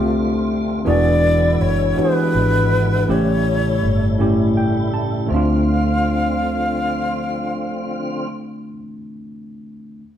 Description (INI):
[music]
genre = slow six-eight R&B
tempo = 54 BPM (dotted quarters)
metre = 6/8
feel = straight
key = unclear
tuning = A4 = 441 Hz
[part]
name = breathy alto flute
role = melody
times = 0.0-8.3 s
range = F4 to F5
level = -22 LUFS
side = left 2 dB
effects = none
[part]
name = tine electric piano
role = accompaniment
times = 0.0-10.0 s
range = A2 to A5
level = -20 LUFS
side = right 1 dB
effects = none
[part]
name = tonewheel organ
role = sustained chords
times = 0.0-8.3 s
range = C#3 to F4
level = -26 LUFS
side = left 2 dB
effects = overdrive, chorus vibrato, slow rotary speaker
[part]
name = vintage muted fingered electric bass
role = bass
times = 0.0-8.7 s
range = E1 to D2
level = -21 LUFS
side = equal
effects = none
[sound]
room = wet stone room reverb, RT60 1.2 s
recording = band playing live in one room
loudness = -16 LUFS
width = side -10 dB against mid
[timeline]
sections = 0.0-5.3 A section; 5.3-7.5 B section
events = tine electric piano fill 4.2-5.3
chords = 0.0 Dm9; 0.9 E7; 3.1 A7; 5.3 Dm7